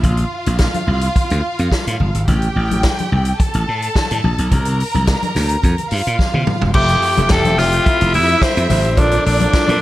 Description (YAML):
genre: disco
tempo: 107 BPM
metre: 4/4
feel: straight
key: F major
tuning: A4 = 440 Hz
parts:
  - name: warm studio violin section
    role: second line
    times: 0.0-9.8 s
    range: D4 to Bb5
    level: -22 LUFS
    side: equal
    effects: none
  - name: slap bass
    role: bass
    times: 0.0-9.8 s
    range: E1 to C3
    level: -17 LUFS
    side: equal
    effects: none
  - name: vintage drum kit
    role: drums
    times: 0.0-9.8 s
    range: crash cymbal, hi-hat, kick drum, snare drum, toms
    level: -19 LUFS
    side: equal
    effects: none
  - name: congas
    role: percussion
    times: 0.0-9.8 s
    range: none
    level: -25 LUFS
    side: left 3 dB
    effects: none
  - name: raspy tenor saxophone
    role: melody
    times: 6.7-9.8 s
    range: C4 to A4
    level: -16 LUFS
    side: equal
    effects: none
  - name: clear concert grand piano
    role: accompaniment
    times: 6.7-9.8 s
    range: F3 to E5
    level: -24 LUFS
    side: left 3 dB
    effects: none
  - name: electric guitar at the edge of break-up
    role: accompaniment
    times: 6.7-9.7 s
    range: F4 to E5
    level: -27 LUFS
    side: right 6 dB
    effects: none
room: small room ambience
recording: none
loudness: -13 LUFS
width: side -15 dB against mid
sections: 0.0-6.8 A section; 6.8-9.8 B section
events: drum fill 6.2-6.8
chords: 0.0 Bb5; 2.3 A7(no3); 4.5 C9sus4; 6.8 Fmaj9; 9.0 Bbmaj7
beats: | 0.04 0.60 1.16 1.72 | 2.28 2.84 3.40 3.96 | 4.52 5.08 5.63 6.19 | 6.75 7.31 7.86 8.42 | 8.97 9.53